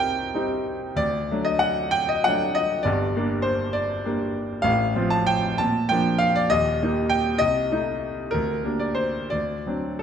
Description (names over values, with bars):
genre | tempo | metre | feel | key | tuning
classical, romantic character piece for solo piano | 65 BPM (dotted quarters) | 6/8 | uneven beats, rubato | G minor | A4 = 440 Hz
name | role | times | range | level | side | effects
clear concert grand piano | solo | 0.0-10.0 s | Eb1 to A5 | -21 LUFS | equal | none
room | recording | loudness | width
wet recital hall reverb, RT60 1.7 s | none | -21 LUFS | side -8 dB against mid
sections
0.0-10.0 A section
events
none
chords
0.0 Cm; 1.0 D; 2.9 Gm; 4.6 F/A; 5.6 Bb; 6.5 Eb; 7.4 Adim/C; 8.3 Gm/D; 9.3 D7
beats
0.02 | 0.98 1.93 | 2.85 3.75 | 4.64 5.58 | 6.49 7.40 | 8.33 9.32